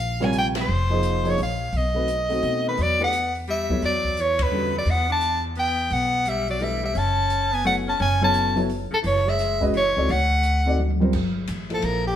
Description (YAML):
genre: modal jazz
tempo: 172 BPM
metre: 3/4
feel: swing 64% on 8ths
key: E dorian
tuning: A4 = 441 Hz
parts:
  - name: breathy soprano saxophone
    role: melody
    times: 0.0-12.2 s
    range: G4 to A5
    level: -23 LUFS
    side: equal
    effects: none
  - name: upright bass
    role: bass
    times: 0.0-12.2 s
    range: F1 to B2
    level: -26 LUFS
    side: equal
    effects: none
  - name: dark baby grand piano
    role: accompaniment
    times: 0.2-12.2 s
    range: C3 to D#5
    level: -26 LUFS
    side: left 1 dB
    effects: none
  - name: open jazz drum kit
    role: drums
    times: 0.2-11.9 s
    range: crash cymbal, hi-hat, kick drum, ride cymbal, snare drum, toms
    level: -30 LUFS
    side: equal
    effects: none
  - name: edgy alto saxophone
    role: second line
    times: 2.7-10.8 s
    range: C#3 to D4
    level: -31 LUFS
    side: left 3 dB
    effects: none
room: wet stone room reverb, RT60 1.1 s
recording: band playing live in one room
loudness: -20 LUFS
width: side -10 dB against mid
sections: 0.0-2.8 A section; 2.8-11.1 B section; 11.1-12.2 C section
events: band accent 0.5, 4.3; drum fill 10.8-11.1; soprano saxophone solo 11.1-12.2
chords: 0.0 Bbm9; 1.7 B7b9; 2.8 Em9; 7.0 F#m9; 10.1 D7; 11.1 Gm11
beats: 0.34 | 0.68 1.03 1.38 | 1.73 2.08 2.43 | 2.78 3.12 3.47 | 3.82 4.17 4.52 | 4.87 5.22 5.57 | 5.92 6.26 6.61 | 6.96 7.31 7.66 | 8.00 8.35 8.70 | 9.05 9.40 9.74 | 10.09 10.44 10.79 | 11.14 11.48 11.83